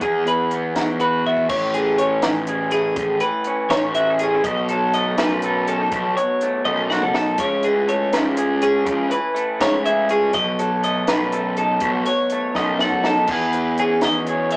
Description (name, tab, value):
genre	math rock and midwest emo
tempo	82 BPM (dotted quarters)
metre	6/8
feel	straight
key	unclear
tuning	A4 = 438 Hz
part	electric guitar through a small old amp	accompaniment	0.0-14.6 s	E2 to A4	-23 LUFS	equal	none
part	twelve-string electric guitar	arpeggios	0.0-14.6 s	G#4 to F#5	-20 LUFS	equal	none
part	fuzz picked electric bass	bass	0.0-14.6 s	A1 to E2	-24 LUFS	equal	overdrive
part	compact cocktail drum kit	drums	0.0-14.6 s	crash cymbal, hi-hat, kick drum, snare drum, toms	-24 LUFS	equal	none
room	moderate small room reverb, RT60 0.5 s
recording	rough rehearsal-room recording, small speaker sound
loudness	-17 LUFS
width	side -25 dB against mid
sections	0.0-1.5 A section; 1.5-13.3 B section; 13.3-14.6 A section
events	drum fill 1.3, 6.7-7.4, 12.5-13.3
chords	0.0 E; 1.5 Amaj7; 4.4 B7; 7.4 Amaj7/C#; 10.3 B7; 13.3 E6